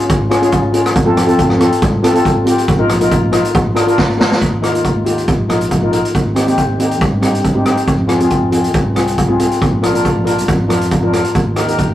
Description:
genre	calypso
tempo	138 BPM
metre	4/4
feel	swing 53% on 16ths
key	Eb major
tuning	A4 = 441 Hz
part	steel pan	accompaniment	0.0-11.9 s	C4 to Bb4	-14 LUFS	left 1 dB	none
part	street-band drum kit	drums	0.0-11.9 s	hi-hat, kick drum, rim click, snare drum	-15 LUFS	equal	none
part	fingered electric bass	bass	0.1-11.9 s	Ab1 to G2	-20 LUFS	right 1 dB	none
room	moderate small room reverb, RT60 0.5 s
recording	rough rehearsal-room recording, warm saturation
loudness	-11 LUFS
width	side -13 dB against mid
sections	0.0-4.4 A section; 4.4-11.9 B section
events	drum fill 4.0-4.4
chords	0.0 Db; 1.0 F; 2.7 Bbsus4; 3.5 Bb; 4.4 Ebsus2; 6.1 Cm/Eb; 7.9 Fm; 9.6 Bb; 11.3 Eb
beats	0.09 0.52 | 0.95 1.39 1.82 2.25 | 2.68 3.11 3.55 3.98 | 4.41 4.84 5.28 5.71 | 6.14 6.58 7.01 7.45 | 7.88 8.31 8.75 9.18 | 9.62 10.05 10.48 10.92 | 11.35 11.78

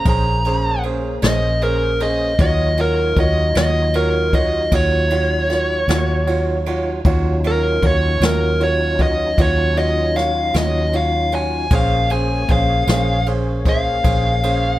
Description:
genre	slow blues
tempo	52 BPM (dotted quarters)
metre	12/8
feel	straight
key	unclear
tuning	A4 = 440 Hz
part	dark smooth lead guitar	melody	0.0-14.8 s	Bb4 to Bb5	-20 LUFS	equal	overdrive
part	tonewheel organ	sustained chords	0.0-14.8 s	Gb3 to Db5	-28 LUFS	left 1 dB	slow rotary speaker, overdrive, chorus vibrato
part	clear concert grand piano	accompaniment	0.1-14.7 s	Db4 to Db5	-24 LUFS	right 3 dB	none
part	vintage muted fingered electric bass	bass	0.1-14.8 s	Bb1 to Eb2	-20 LUFS	equal	none
part	jazz brush drum kit	drums	0.1-14.6 s	kick drum, ride cymbal, snare drum	-21 LUFS	equal	none
room	light reverb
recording	none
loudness	-15 LUFS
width	side -15 dB against mid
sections	0.0-14.8 A section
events	lead electric guitar solo 0.0-14.8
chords	0.0 Bbm9; 2.4 Ebm9; 11.7 Bbm9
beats	0.06 1.22 | 2.39 3.55 4.72 5.88 | 7.05 8.21 9.38 10.55 | 11.71 12.88 14.04

